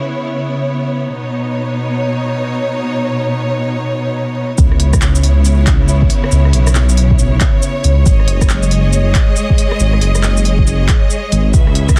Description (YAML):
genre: future garage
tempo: 138 BPM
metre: 4/4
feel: swing 62% on 16ths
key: C# minor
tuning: A4 = 440 Hz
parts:
  - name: clear symphonic string section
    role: sustained chords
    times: 0.0-12.0 s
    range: B2 to E5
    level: -20 LUFS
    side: equal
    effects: sidechain pumping, low-pass filter
  - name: dark detuned saw bass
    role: bass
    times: 4.6-12.0 s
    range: F#1 to C#2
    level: -14 LUFS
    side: equal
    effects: sidechain pumping
  - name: electronic kick drum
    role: drums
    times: 4.6-12.0 s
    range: none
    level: -15 LUFS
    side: equal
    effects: none
  - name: organic electronic drum kit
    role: drums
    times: 4.6-12.0 s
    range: handclaps, hi-hat, rim click, shaker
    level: -23 LUFS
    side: equal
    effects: low-pass filter on perc, low-pass filter on snare, low-pass filter on hats
room: digital ambience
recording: dense, heavily limited modern master, vinyl crackle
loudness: -14 LUFS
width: mono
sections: 0.0-4.6 A section; 4.6-12.0 B section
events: none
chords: 0.0 C#m7; 1.1 Badd9; 4.6 C#m7; 8.1 G#sus4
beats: 0.23 0.67 | 1.10 1.54 1.97 2.41 | 2.84 3.28 3.71 4.15 | 4.58 5.02 5.45 5.89 | 6.32 6.75 7.19 7.62 | 8.06 8.49 8.93 9.36 | 9.80 10.23 10.67 11.10 | 11.54 11.97